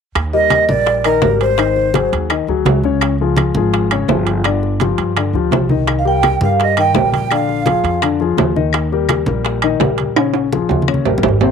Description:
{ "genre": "Afro-Cuban jazz", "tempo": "168 BPM", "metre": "4/4", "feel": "straight", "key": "Eb major", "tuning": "A4 = 440 Hz", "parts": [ { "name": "upright bass", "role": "bass", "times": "0.2-11.5 s", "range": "G1 to G2", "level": "-19 LUFS", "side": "right 2 dB", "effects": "none" }, { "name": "bongos", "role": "percussion", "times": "0.2-11.5 s", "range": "none", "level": "-23 LUFS", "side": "left 12 dB", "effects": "none" }, { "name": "claves", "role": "percussion", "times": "0.2-11.1 s", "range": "none", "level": "-25 LUFS", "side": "left 13 dB", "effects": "none" }, { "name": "congas", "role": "percussion", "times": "0.2-11.5 s", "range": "none", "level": "-22 LUFS", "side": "right 1 dB", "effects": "none" }, { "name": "timbales", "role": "percussion", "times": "0.2-11.5 s", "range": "none", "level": "-20 LUFS", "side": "right 14 dB", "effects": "none" }, { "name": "vibraphone with soft mallets", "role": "melody", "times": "0.3-2.1, 6.0-8.0 s", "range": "Bb4 to G5", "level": "-16 LUFS", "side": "right 1 dB", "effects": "none" }, { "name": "breathy jazz flute", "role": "second line", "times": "0.3-2.1, 6.0-8.0 s", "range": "Bb4 to G5", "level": "-20 LUFS", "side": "right 13 dB", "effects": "none" }, { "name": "warm concert grand piano", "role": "accompaniment", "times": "0.3-11.5 s", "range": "C3 to Eb5", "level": "-18 LUFS", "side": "left 10 dB", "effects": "none" } ], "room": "light reverb", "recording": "1960s-style stereo with parts hard left and right", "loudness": "-13 LUFS", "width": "side -6 dB against mid", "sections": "0.2-11.5 A section", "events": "drum fill 10.2-11.5", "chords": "0.2 Ebmaj7; 1.6 Ab7; 3.0 Db; 4.4 G5; 5.9 Cm7; 7.3 Bb7; 8.7 Eb; 10.2 Bbm7; 10.9 Eb6", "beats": "| 0.16 0.52 0.87 1.23 | 1.59 1.95 2.30 2.66 | 3.02 3.38 3.73 4.09 | 4.45 4.81 5.16 5.52 | 5.88 6.24 6.59 6.95 | 7.31 7.67 8.02 8.38 | 8.74 9.10 9.45 9.81 | 10.17 10.52 10.88 11.24" }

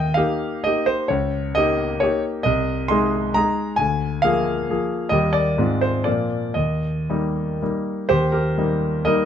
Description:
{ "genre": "classical, romantic triple-time dance for piano with dotted rhythms", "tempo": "109-141 BPM", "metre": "3/4", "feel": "rubato", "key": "Eb major", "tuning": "A4 = 440 Hz", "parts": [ { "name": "clear grand piano", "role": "solo", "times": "0.0-9.3 s", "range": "C2 to C6", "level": "-19 LUFS", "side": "equal", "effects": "none" } ], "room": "light reverb", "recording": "close, detailed microphones", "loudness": "-19 LUFS", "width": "side -8 dB against mid", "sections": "0.0-8.1 A section; 8.1-9.3 A section", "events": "none", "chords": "0.0 Eb; 1.1 Eb7/Db; 2.4 Ab/C; 3.8 Bb7/D; 5.1 Eb; 5.6 Fm/Ab; 6.1 Bb; 6.6 Eb", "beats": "0.17 0.64 | 1.10 1.56 2.02 | 2.45 2.90 3.36 | 3.79 4.24 4.70 | 5.13 5.58 6.06 | 6.55 7.09 7.61 | 8.09 8.56 9.04" }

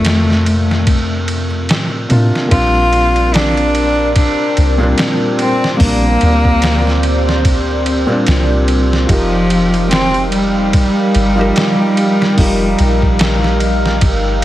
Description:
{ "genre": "trip hop", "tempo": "73 BPM", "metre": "4/4", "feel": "swing 57% on 16ths", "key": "unclear", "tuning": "A4 = 442 Hz", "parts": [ { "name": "warm cello", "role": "melody", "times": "0.0-14.4 s", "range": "F3 to F4", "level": "-16 LUFS", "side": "equal", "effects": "tape echo" }, { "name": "felt-muted upright piano", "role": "accompaniment", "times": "0.0-14.4 s", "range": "Bb2 to Bb4", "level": "-19 LUFS", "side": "equal", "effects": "harmonic tremolo, tape echo" }, { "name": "soft 808-style bass", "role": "bass", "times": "0.0-14.4 s", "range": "F1 to A2", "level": "-16 LUFS", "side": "equal", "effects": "none" }, { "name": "trip hop sampler-style drum kit", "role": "drums", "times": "0.0-14.4 s", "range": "hi-hat, kick drum, ride cymbal, snare drum", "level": "-17 LUFS", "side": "equal", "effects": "none" }, { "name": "warbly tape-like pad", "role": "sustained chords", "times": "3.2-14.4 s", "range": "C4 to F5", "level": "-20 LUFS", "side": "left 1 dB", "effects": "chorus, built-in reverb" } ], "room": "little or no reverb", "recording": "heavily compressed radio sound", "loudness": "-11 LUFS", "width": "side -14 dB against mid", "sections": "0.0-14.4 A section", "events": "none", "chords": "0.0 C9sus4; 2.5 Bb69; 9.1 F9sus4", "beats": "0.05 0.87 1.69 | 2.52 3.34 4.16 4.98 | 5.80 6.62 7.45 8.27 | 9.09 9.91 10.73 11.56 | 12.38 13.20 14.02" }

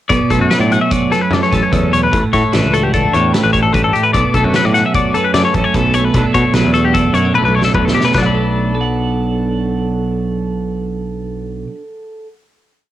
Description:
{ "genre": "math rock and midwest emo", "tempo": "149 BPM", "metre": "5/4", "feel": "straight", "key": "B minor", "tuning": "A4 = 437 Hz", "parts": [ { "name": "twelve-string electric guitar", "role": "accompaniment", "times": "0.1-12.3 s", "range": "F#2 to F#5", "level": "-17 LUFS", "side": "right 4 dB", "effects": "cassette tape" }, { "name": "twelve-string electric guitar", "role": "arpeggios", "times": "0.1-11.7 s", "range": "F#4 to B5", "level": "-16 LUFS", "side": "left 5 dB", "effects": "cassette tape" }, { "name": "modern bright picked electric bass", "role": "bass", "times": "0.1-11.6 s", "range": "A1 to B2", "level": "-18 LUFS", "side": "left 1 dB", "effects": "none" }, { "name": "loose indie drum kit", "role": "drums", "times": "0.1-8.2 s", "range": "hi-hat, kick drum, snare drum, toms", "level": "-19 LUFS", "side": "left 1 dB", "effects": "cassette tape" } ], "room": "studio ambience", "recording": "home recording on cassette", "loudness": "-12 LUFS", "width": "side -12 dB against mid", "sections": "0.1-8.1 A section; 8.1-12.2 final chord", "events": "drum fill 7.3-8.1", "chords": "0.1 Bm9; 2.1 A7sus4; 4.1 Bm9; 6.1 Bm7", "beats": "| 0.11 0.51 0.92 1.32 1.72 | 2.13 2.53 2.93 3.34 3.74 | 4.14 4.54 4.94 5.34 5.74 | 6.14 6.54 6.95 7.34 7.75 | 8.15 8.55 8.95 9.35 9.75 | 10.15 10.55 10.95 11.36 11.76" }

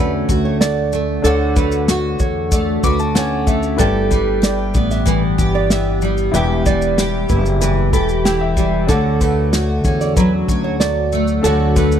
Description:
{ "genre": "acoustic pop", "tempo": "94 BPM", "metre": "4/4", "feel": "straight", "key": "D major", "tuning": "A4 = 438 Hz", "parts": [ { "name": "clear grand piano", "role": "accompaniment", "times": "0.0-12.0 s", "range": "D4 to D6", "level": "-25 LUFS", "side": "left 6 dB", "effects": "none" }, { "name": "picked steel-string acoustic guitar", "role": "accompaniment", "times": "0.0-12.0 s", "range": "E2 to G4", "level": "-18 LUFS", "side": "left 1 dB", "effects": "double-tracked left and right" }, { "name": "nylon-string guitar", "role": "arpeggios", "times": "0.0-12.0 s", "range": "G4 to E5", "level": "-22 LUFS", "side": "right 8 dB", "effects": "tape echo" }, { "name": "upright bass", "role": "bass", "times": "0.0-12.0 s", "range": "E1 to E2", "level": "-20 LUFS", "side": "equal", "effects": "none" }, { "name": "natural country drum kit", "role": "drums", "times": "0.3-12.0 s", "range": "kick drum, shaker, snare drum", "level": "-18 LUFS", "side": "equal", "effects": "none" } ], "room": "small room reverb", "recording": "dry, close 1970s-style studio recording", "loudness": "-14 LUFS", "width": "side -9 dB against mid", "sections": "0.0-12.0 A section", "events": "grand piano fill 2.5-3.8, 7.6-8.9", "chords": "0.0 Dmaj7; 3.8 G6; 6.3 Em; 8.9 Dmaj7", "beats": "0.61 | 1.25 1.88 2.52 3.16 | 3.79 4.43 5.07 5.71 | 6.34 6.98 7.62 8.25 | 8.89 9.53 10.17 10.80 | 11.44" }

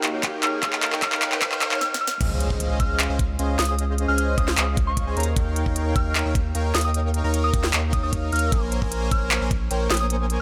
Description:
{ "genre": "future bass", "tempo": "152 BPM", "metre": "4/4", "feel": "half-time", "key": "Db lydian", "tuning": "A4 = 439 Hz", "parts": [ { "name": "airy breathy pad", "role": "sustained chords", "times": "0.0-1.8 s", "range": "Db3 to G4", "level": "-42 LUFS", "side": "equal", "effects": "chorus, sidechain pumping" }, { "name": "soft supersaw", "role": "riff", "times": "0.0-10.4 s", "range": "Bb3 to Bb5", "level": "-30 LUFS", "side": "equal", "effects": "sidechain pumping" }, { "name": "trap drum kit", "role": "drums", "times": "0.0-10.4 s", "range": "crash cymbal, handclaps, hi-hat, snare drum", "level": "-27 LUFS", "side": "equal", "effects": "none" }, { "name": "riser and impact", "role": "sound effects", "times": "0.0-3.8 s", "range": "none", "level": "-36 LUFS", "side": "equal", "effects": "none" }, { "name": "electronic kick drum", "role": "drums", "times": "0.2-9.6 s", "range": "none", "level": "-27 LUFS", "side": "equal", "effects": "none" }, { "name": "soft synth bell", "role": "melody", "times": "0.4-10.1 s", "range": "Db6 to F6", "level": "-31 LUFS", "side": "equal", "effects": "chorus, sidechain pumping, digital delay" }, { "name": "saturated sub bass", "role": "bass", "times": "2.2-10.4 s", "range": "Bb1 to Eb2", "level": "-27 LUFS", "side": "equal", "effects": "sidechain pumping" } ], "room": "light reverb", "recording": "high-pass filter", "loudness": "-23 LUFS", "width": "mono", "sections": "0.0-2.2 A section; 2.2-10.4 B section", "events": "build-up 0.0-2.2; drum fill 0.0-1.8, 1.8-2.2; riser 0.0-1.8; filter sweep on supersaw synth 0.0-2.2; drop 2.2-10.4; impact 2.2-3.8", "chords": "0.0 Eb7; 2.2 Dbmaj7; 5.2 Eb7; 8.5 Bbm7", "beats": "0.23 | 0.63 1.02 1.42 1.81 | 2.21 2.60 3.00 3.39 | 3.79 4.18 4.58 4.97 | 5.37 5.76 6.15 6.55 | 6.94 7.34 7.73 8.13 | 8.52 8.92 9.31 9.71 | 10.10" }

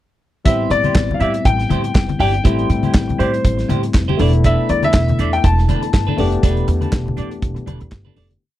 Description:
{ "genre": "disco", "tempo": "120 BPM", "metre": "4/4", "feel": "swing 56% on 16ths", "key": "A minor", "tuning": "A4 = 437 Hz", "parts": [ { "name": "barky tine electric piano", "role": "accompaniment", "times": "0.4-8.4 s", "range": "G3 to G4", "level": "-23 LUFS", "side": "left 6 dB", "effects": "none" }, { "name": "warm concert grand piano", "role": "melody", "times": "0.5-7.9 s", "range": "C5 to A5", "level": "-20 LUFS", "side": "left 2 dB", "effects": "none" }, { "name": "semi-hollow electric guitar", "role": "accompaniment", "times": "0.5-8.3 s", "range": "D4 to D5", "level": "-25 LUFS", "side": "right 6 dB", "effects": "phaser" }, { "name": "upright bass", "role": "bass", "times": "0.5-8.3 s", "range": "E1 to A2", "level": "-19 LUFS", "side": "right 1 dB", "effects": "none" }, { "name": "warm soul drum kit", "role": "drums", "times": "0.5-8.4 s", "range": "handclaps, hi-hat, kick drum, snare drum", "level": "-15 LUFS", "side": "right 1 dB", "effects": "none" }, { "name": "congas", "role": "percussion", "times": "0.5-8.4 s", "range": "none", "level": "-24 LUFS", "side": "left 4 dB", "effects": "none" } ], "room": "little or no reverb", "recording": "dry, close 1970s-style studio recording", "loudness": "-14 LUFS", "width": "side -14 dB against mid", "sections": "0.5-8.4 verse", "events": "fade-out 6.4-8.4", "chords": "0.5 Am7; 4.2 E7sus4", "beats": "| 0.46 0.95 1.45 1.95 | 2.45 2.95 3.45 3.94 | 4.44 4.94 5.44 5.93 | 6.43 6.93 7.43 7.92" }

